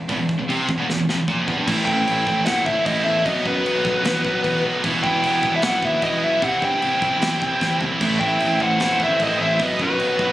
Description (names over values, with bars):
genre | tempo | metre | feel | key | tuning
heavy metal | 151 BPM | 4/4 | straight | E harmonic minor | A4 = 440 Hz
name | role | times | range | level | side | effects
high-gain distorted guitar | riff | 0.0-10.3 s | E2 to E4 | -24 LUFS | right 4 dB | distortion
overdriven electric guitar | riff | 0.0-10.3 s | E2 to C4 | -26 LUFS | equal | none
scooped high-gain guitar | riff | 0.0-10.3 s | E2 to G3 | -28 LUFS | left 5 dB | distortion
picked electric bass | bass | 0.0-10.3 s | E1 to G2 | -28 LUFS | equal | none
modern studio drum kit | drums | 0.1-10.3 s | crash cymbal, kick drum, snare drum, toms | -28 LUFS | equal | none
high-gain lead guitar | melody | 1.9-10.3 s | B4 to G5 | -21 LUFS | equal | distortion
high-gain lead guitar | second line | 8.2-10.3 s | F#4 to E5 | -28 LUFS | right 1 dB | distortion
room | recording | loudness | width
light reverb | recorded on a phone in the room, club reverb | -18 LUFS | side -14 dB against mid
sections
0.0-1.7 A section; 1.7-10.3 B section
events
drum fill 0.9-1.7, 7.6-8.0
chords
0.0 Em; 1.7 Am; 3.3 B; 4.8 Em; 6.4 C; 8.0 Am; 9.6 B